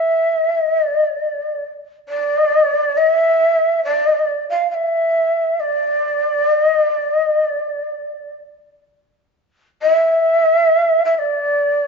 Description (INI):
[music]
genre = japanese traditional, Japanese chamber music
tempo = free time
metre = none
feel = none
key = D hirajoshi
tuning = A4 = 440 Hz
[part]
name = breathy mellow shakuhachi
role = solo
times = 0.0-11.9 s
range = D5 to F5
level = -15 LUFS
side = equal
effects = none
[sound]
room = moderate recital hall reverb, RT60 1.4 s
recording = nothing above 7.6 kHz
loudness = -14 LUFS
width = side -5 dB against mid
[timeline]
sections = 0.0-9.3 A section; 9.3-11.9 B section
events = none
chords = none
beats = free time